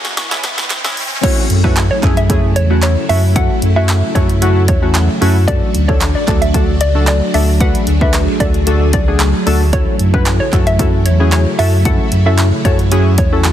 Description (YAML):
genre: dance-pop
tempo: 113 BPM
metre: 4/4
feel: straight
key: F# minor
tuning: A4 = 440 Hz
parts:
  - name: warm analog keys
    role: accompaniment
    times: 0.0-13.5 s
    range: G#3 to B4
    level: -19 LUFS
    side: left 2 dB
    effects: chorus, sidechain pumping
  - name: string machine, full ensemble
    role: sustained chords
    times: 0.0-13.5 s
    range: C#3 to G#4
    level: -21 LUFS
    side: equal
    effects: ensemble chorus, sidechain pumping
  - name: sub bass with octave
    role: bass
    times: 0.0-13.5 s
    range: B1 to F#2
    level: -13 LUFS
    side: equal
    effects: sidechain pumping
  - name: punchy analog drum machine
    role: drums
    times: 0.0-13.5 s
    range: crash cymbal, handclaps, hi-hat, kick drum, snare drum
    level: -16 LUFS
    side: equal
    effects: none
  - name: riser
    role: sound effects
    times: 0.0-1.2 s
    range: none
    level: -23 LUFS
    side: left 1 dB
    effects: none
  - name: mallet-like synth pluck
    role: arpeggios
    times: 0.2-0.9 s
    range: G#3 to C#6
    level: -30 LUFS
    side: right 2 dB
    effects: none
  - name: group handclap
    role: percussion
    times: 0.7-13.5 s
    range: none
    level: -27 LUFS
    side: right 8 dB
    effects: none
  - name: hollow square pluck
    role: melody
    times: 1.2-13.5 s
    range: B4 to F#5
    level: -21 LUFS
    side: equal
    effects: chorus, sidechain pumping, tape echo
room: light reverb, digital ambience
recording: dense, heavily limited modern master, high-pass filter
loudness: -11 LUFS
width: side -11 dB against mid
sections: 0.0-1.2 A section; 1.2-13.5 B section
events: build-up 0.0-1.2; drum fill 0.0-1.2; riser 0.0-1.2; drop 1.2-13.5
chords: 0.0 C#m; 1.2 F#m7; 5.5 D; 9.7 F#m7